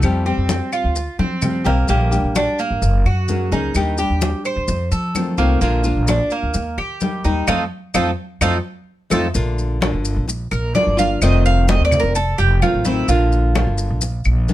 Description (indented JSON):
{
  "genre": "latin, Cuban son and guajira",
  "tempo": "129 BPM",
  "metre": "4/4",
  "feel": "straight",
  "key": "Bb major",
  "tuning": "A4 = 441 Hz",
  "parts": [
    { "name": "nylon-string guitar", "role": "accompaniment", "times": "0.0-14.5 s", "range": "C3 to Ab4", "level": "-22 LUFS", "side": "left 3 dB", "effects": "none" },
    { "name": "Cuban tres", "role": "arpeggios", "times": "0.0-14.4 s", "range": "A3 to F5", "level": "-21 LUFS", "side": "right 3 dB", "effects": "none" },
    { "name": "upright bass", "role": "bass", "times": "0.0-14.5 s", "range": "F1 to F3", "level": "-18 LUFS", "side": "equal", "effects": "none" },
    { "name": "claves", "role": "percussion", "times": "0.0-14.5 s", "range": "none", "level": "-28 LUFS", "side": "left 3 dB", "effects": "none" },
    { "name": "congas", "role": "percussion", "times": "0.0-14.5 s", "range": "none", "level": "-24 LUFS", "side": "left 2 dB", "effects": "none" },
    { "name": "maracas", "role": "percussion", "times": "0.0-14.5 s", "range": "none", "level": "-29 LUFS", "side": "left 4 dB", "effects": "none" }
  ],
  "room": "little or no reverb",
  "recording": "close, detailed microphones",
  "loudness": "-16 LUFS",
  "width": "side -14 dB against mid",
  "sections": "0.0-9.3 A section; 9.3-14.5 B section",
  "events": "drum fill 1.2-1.9, 8.6-9.3; band accent 7.5-9.3; Cuban tres solo 9.3-14.5",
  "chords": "0.0 Fadd9; 1.9 Bb6; 2.8 Gbadd9; 3.8 Ebmaj7; 4.7 F7; 5.6 Bb; 6.5 Eb; 7.5 F7; 9.3 Bb; 11.2 F7; 13.1 Bb"
}